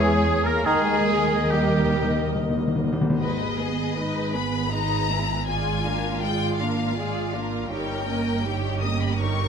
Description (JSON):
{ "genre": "classical", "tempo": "68-83 BPM", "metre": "3/4", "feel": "rubato", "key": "G# minor", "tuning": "A4 = 440 Hz", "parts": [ { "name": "rich studio violin section", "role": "melody", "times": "0.0-9.5 s", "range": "G4 to D#6", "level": "-30 LUFS", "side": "left 6 dB", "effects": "none" }, { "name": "clear oboe", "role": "second line", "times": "0.0-2.4 s", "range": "G4 to A#4", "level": "-28 LUFS", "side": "equal", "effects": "none" }, { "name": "flute section", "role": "second line", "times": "0.0-1.1 s", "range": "G#5 to A#5", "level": "-30 LUFS", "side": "right 1 dB", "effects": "none" }, { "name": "rich studio violin section", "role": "second line", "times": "0.0-9.5 s", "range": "G4 to E#5", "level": "-32 LUFS", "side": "left 2 dB", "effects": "none" }, { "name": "warm clarinet", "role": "second line", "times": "0.0-1.0 s", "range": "A#4 to C#5", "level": "-33 LUFS", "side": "left 1 dB", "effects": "none" }, { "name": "clear bassoon", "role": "accompaniment", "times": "0.0-1.0 s", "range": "D#3 to E3", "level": "-30 LUFS", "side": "right 1 dB", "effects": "none" }, { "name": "rich studio viola section", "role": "accompaniment", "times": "0.0-9.5 s", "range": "G3 to D#5", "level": "-29 LUFS", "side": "right 2 dB", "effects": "none" }, { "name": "mellow French horn section", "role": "sustained chords", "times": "0.0-2.9 s", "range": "G#4 to D#5", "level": "-30 LUFS", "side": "left 6 dB", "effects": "none" }, { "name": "clear trumpet", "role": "stabs", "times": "0.0-2.4 s", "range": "G4 to A#4", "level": "-29 LUFS", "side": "right 1 dB", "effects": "none" }, { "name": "rich studio double bass section", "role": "bass", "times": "0.0-9.5 s", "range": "G1 to E2", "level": "-27 LUFS", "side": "right 3 dB", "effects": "none" }, { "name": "warm studio cello section", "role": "bass", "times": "0.0-9.5 s", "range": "G3 to B4", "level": "-31 LUFS", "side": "right 1 dB", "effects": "none" }, { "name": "timpani", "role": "percussion", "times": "0.7-3.2 s", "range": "D#3", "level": "-26 LUFS", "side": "left 2 dB", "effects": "none" } ], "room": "moderate scoring stage reverb, RT60 1.5 s", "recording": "none", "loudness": "-21 LUFS", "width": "side -7 dB against mid", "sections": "0.0-3.2 A section; 3.2-9.5 B section", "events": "timpani fill 0.7-3.2", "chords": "0.0 C#m/E; 0.7 D#; 3.2 G#m; 5.5 A#7/G#; 7.7 D#7/G" }